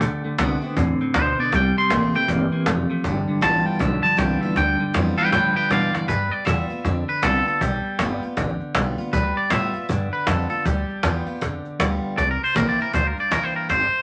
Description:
rockabilly; 158 BPM; 4/4; swing 62% on 8ths; G mixolydian; A4 = 440 Hz
picked steel-string acoustic guitar; accompaniment; 0.0-14.0 s; G2 to F#4; -30 LUFS; equal
clean electric guitar; riff; 0.0-6.1 s; G2 to C4; -26 LUFS; equal; tremolo
upright bass; bass; 0.0-14.0 s; F1 to B2; -28 LUFS; equal
cajon; drums; 0.0-14.0 s; -27 LUFS; equal
twangy electric guitar; melody; 1.1-14.0 s; G4 to C6; -25 LUFS; equal; spring reverb
moderate studio reverb, RT60 0.6 s; -22 LUFS; mono
0.0-6.1 A section; 6.1-14.0 B section
clean electric guitar solo 0.0-6.1; drum fill 5.3-6.1
0.0 D7; 1.5 C7; 3.0 G7; 12.2 C7

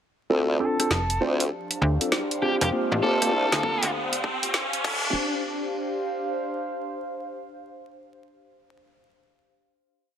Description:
glitch hop; 99 BPM; 4/4; swing 64% on 16ths; D minor; A4 = 440 Hz
mellow tine electric piano; stabs; 0.3-5.1 s; Bb3 to C5; -29 LUFS; equal; medium stereo tremolo, sidechain pumping, low-pass filter, tape echo
formant-sweep wobble bass; bass; 0.3-5.1 s; D1 to D2; -25 LUFS; equal; chorus, high-pass filter
riser; sound effects; 1.7-5.1 s; -31 LUFS; equal
warbly tape-like pad; texture; 1.5-7.5 s; D4 to F5; -31 LUFS; equal; chorus, built-in reverb, sidechain pumping
smooth overdriven lead guitar; melody; 0.6-3.9 s; G4 to A4; -29 LUFS; right 1 dB; vintage 12-bit sampler grit, low-pass filter, tape echo
drum and bass drum kit; drums; 0.8-5.0 s; crash cymbal, hi-hat, rim click, snare drum; -28 LUFS; equal
slap-like FM bass; bass; 0.9-4.2 s; F1 to D2; -25 LUFS; equal
electronic kick drum; drums; 3.6-5.0 s; -32 LUFS; equal
light reverb, digital ambience; vinyl crackle, high-pass filter; -23 LUFS; side -9 dB against mid
0.3-5.1 build; 5.1-7.6 final chord
build-up 0.3-5.1; filter sweep on tine electric piano 0.3-5.1; filter sweep on lead electric guitar 0.3-5.1; filter sweep 0.3-5.1; riser 1.7-5.1
0.3 Dm7; 2.7 C7sus4; 4.8 Dm7

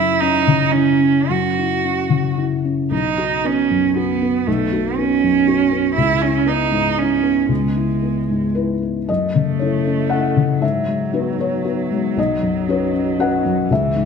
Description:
neoclassical piano and strings; 103-122 BPM; 3/4; rubato; F# dorian; A4 = 440 Hz
rich cello; second line; 0.0-14.1 s; E3 to F#4; -19 LUFS; right 8 dB
felt-muted upright piano; accompaniment; 0.0-14.1 s; B1 to F#5; -18 LUFS; left 4 dB
wet scoring stage reverb, RT60 1.5 s; -16 LUFS; side -6 dB against mid
0.0-9.1 A section; 9.1-14.1 B section
0.0 F#7(no3); 2.9 B5; 6.0 C#m7; 9.1 F#m7; 10.6 Eadd9/G#; 12.2 Bsus2

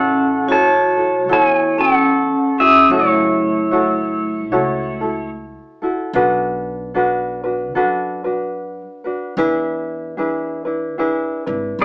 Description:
Hawaiian; 74 BPM; 4/4; swing 60% on 8ths; A major; A4 = 435 Hz
pedal steel guitar; melody; 0.0-5.3, 11.8 s; E4 to A5; -14 LUFS; equal
vibraphone with medium hard mallets; second line; 0.0-5.3, 11.8 s; A3 to F#4; -20 LUFS; equal
tenor ukulele; accompaniment; 0.0-11.8 s; D4 to C#5; -19 LUFS; equal
upright bass; bass; 0.0-11.8 s; F#1 to F#2; -32 LUFS; equal
moderate studio reverb, RT60 0.7 s; band playing live in one room, small speaker sound; -14 LUFS; side -26 dB against mid
0.0-11.8 A section
0.0 A6; 2.9 F#m7; 6.1 Bm7; 9.4 E7

